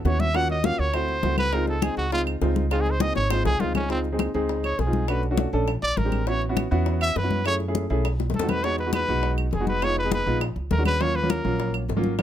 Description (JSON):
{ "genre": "Afro-Cuban jazz", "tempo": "203 BPM", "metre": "4/4", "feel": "straight", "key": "unclear", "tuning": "A4 = 440 Hz", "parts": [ { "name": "clear trumpet", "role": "melody", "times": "0.0-11.7 s", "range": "C4 to Gb5", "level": "-26 LUFS", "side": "equal", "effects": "none" }, { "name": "warm baby grand piano", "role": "accompaniment", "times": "0.0-12.2 s", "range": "Gb3 to A4", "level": "-27 LUFS", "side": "equal", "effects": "none" }, { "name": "upright bass", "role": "bass", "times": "0.0-12.2 s", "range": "F1 to F#2", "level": "-26 LUFS", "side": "right 1 dB", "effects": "none" }, { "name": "bongos", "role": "percussion", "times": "0.1-12.2 s", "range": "none", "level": "-33 LUFS", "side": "left 8 dB", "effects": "none" }, { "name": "congas", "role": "percussion", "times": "0.1-12.2 s", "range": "none", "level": "-30 LUFS", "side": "left 5 dB", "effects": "none" }, { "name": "claves", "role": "percussion", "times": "0.3-12.2 s", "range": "none", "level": "-34 LUFS", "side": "right 6 dB", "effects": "none" } ], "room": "little or no reverb", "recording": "close, detailed microphones", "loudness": "-22 LUFS", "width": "side -11 dB against mid", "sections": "0.0-3.9 A section; 3.9-12.2 A section", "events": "trumpet solo 0.0-12.2; drum fill 3.0-3.9, 8.2-8.6", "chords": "0.3 Ebm7; 0.9 D9; 1.5 Dbmaj9; 5.1 Cbm9; 5.7 Bb13; 6.3 A6; 7.5 Gbm9; 8.0 Cb7b9; 8.6 Emaj9; 9.8 Fm7b5; 10.4 Bb7alt; 11.0 Ebm9" }